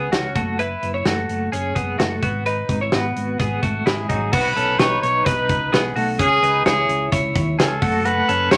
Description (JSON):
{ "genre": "jangly indie pop", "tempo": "129 BPM", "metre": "4/4", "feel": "straight", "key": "B mixolydian", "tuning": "A4 = 440 Hz", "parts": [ { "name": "twelve-string electric guitar", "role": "arpeggios", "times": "0.0-8.6 s", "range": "F#3 to C#5", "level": "-24 LUFS", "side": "equal", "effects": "tremolo" }, { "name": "hollow-body short-scale fingered electric bass", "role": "bass", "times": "0.0-8.6 s", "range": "F#1 to D#2", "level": "-29 LUFS", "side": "equal", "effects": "none" }, { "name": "modern studio drum kit", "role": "drums", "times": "0.1-8.6 s", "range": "crash cymbal, hi-hat, kick drum, snare drum", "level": "-24 LUFS", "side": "equal", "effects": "none" }, { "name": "clear trumpet", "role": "melody", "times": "3.9-8.6 s", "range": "G#4 to C#5", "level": "-22 LUFS", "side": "equal", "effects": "none" } ], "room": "moderate club reverb, RT60 0.5 s", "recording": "vinyl crackle", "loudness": "-20 LUFS", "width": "mono", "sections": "0.0-4.3 A section; 4.3-8.6 B section", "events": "none", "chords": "0.4 F#m7; 2.2 G#m; 4.3 Badd9; 6.2 C#m; 7.8 F#m" }